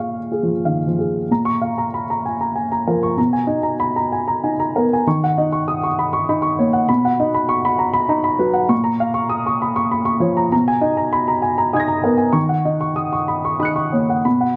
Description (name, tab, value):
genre	neoclassical minimalist piano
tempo	97 BPM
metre	3/4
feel	rubato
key	unclear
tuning	A4 = 439 Hz
part	dark upright piano	solo	0.0-14.6 s	A#2 to C#7	-19 LUFS	equal	none
room	moderate spring reverb, RT60 1.8 s, studio reverb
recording	worn, warbling old tape, cassette tape, warbly pitch drift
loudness	-19 LUFS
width	mono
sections	0.0-1.3 A section; 1.3-14.6 B section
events	none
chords	0.0 A#m7; 1.3 A#m; 3.2 G#madd9/B; 5.1 D#m7; 6.9 B; 8.7 A#m; 10.5 G#madd9/B; 12.4 D#m7